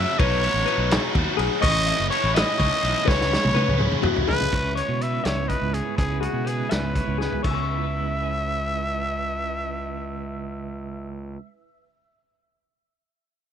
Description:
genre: math rock and midwest emo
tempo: 82 BPM (dotted quarters)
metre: 6/8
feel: straight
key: C# minor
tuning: A4 = 440 Hz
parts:
  - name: growling trumpet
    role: melody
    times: 0.0-11.1 s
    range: F#4 to E5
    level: -26 LUFS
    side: equal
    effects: tape echo
  - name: clean electric guitar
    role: arpeggios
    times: 0.0-11.5 s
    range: F#4 to C#6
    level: -28 LUFS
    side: left 13 dB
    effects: none
  - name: cranked stack guitar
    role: riff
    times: 0.0-4.5 s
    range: A2 to E4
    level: -27 LUFS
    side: right 2 dB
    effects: overdrive
  - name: fuzz fingered electric bass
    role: bass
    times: 0.0-11.4 s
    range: F#1 to B2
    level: -28 LUFS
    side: equal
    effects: overdrive
  - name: loose indie drum kit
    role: drums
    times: 0.2-7.6 s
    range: crash cymbal, hi-hat, kick drum, ride cymbal, snare drum, toms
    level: -25 LUFS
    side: equal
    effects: none
  - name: twelve-string electric guitar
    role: accompaniment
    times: 4.5-11.9 s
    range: G#2 to G#5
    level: -34 LUFS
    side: right 16 dB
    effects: tremolo
room: little or no reverb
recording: 1960s-style stereo with parts hard left and right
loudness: -21 LUFS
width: side -8 dB against mid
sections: 0.0-4.5 A section; 4.5-7.4 B section; 7.4-10.4 C section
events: drum fill 3.1-4.5, 7.2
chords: 0.2 B13; 1.6 A; 3.1 C#m7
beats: | 0.18 0.90 | 1.62 2.34 | 3.06 3.79 | 4.51 5.24 | 5.97 6.70 | 7.44 8.17 | 8.90 9.64

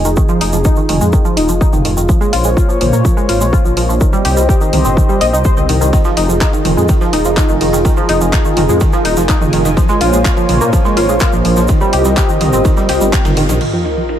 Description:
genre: melodic techno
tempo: 125 BPM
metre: 4/4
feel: straight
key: F minor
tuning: A4 = 440 Hz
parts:
  - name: dark analog pad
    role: sustained chords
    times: 0.0-14.2 s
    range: Bb3 to Ab5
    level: -18 LUFS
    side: left 1 dB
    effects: chorus, sidechain pumping
  - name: tight sequenced synth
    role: arpeggios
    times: 0.0-14.2 s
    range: Eb3 to Eb5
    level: -17 LUFS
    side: equal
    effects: chorus, cassette tape, sidechain pumping, ping-pong delay
  - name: dark detuned saw bass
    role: bass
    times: 0.0-13.6 s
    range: Eb1 to Bb2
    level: -16 LUFS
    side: equal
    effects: sidechain pumping
  - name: egg shaker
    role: percussion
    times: 0.0-13.6 s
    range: none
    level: -27 LUFS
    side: right 2 dB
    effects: none
  - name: granular cloud pad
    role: texture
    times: 1.6-14.2 s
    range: F4 to Ab5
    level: -21 LUFS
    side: right 2 dB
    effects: built-in reverb, sidechain pumping
  - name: electronic kick drum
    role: drums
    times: 0.2-13.2 s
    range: none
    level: -13 LUFS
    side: equal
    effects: none
  - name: house drum kit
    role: drums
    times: 0.4-13.7 s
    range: crash cymbal, handclaps, hi-hat, toms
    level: -21 LUFS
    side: equal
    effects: none
  - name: dusty soul sampler-style drum kit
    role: drums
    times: 5.9-14.2 s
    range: hi-hat, ride cymbal, snare drum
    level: -32 LUFS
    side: right 2 dB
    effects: none
  - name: swarming drone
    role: drone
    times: 14.2 s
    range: none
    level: barely audible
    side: none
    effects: none
  - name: sub drop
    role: sound effects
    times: 13.6-14.2 s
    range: none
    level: -22 LUFS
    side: equal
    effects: none
room: light reverb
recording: none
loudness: -10 LUFS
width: side -10 dB against mid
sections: 0.0-13.6 A section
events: fade-in on ambient pad 0.0-13.6; band accent 13.1; impact 13.6-14.2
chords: 0.0 Fm7; 2.1 Bbm7; 4.0 Cm; 5.9 Fm7; 9.8 Bbm7; 11.7 Cm; 13.6 Fm7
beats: | 0.17 0.65 1.13 1.61 | 2.09 2.57 3.05 3.53 | 4.01 4.49 4.97 5.45 | 5.93 6.41 6.89 7.37 | 7.85 8.33 8.81 9.29 | 9.77 10.25 10.73 11.21 | 11.69 12.17 12.65 13.13 | 13.61 14.09

